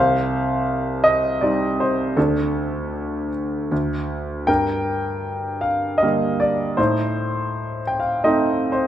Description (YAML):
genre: classical, lyrical solo piano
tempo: 76-85 BPM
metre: 3/4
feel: rubato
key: G minor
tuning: A4 = 441 Hz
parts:
  - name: warm grand piano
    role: solo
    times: 0.0-8.9 s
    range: C2 to G5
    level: -19 LUFS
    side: equal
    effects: none
room: moderate recital hall reverb, RT60 1.5 s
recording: none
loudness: -19 LUFS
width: side -11 dB against mid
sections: 0.0-8.9 A section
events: grand piano fill 7.5-8.9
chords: 0.0 Cm; 2.2 N.C.; 4.5 Gm; 6.8 Adim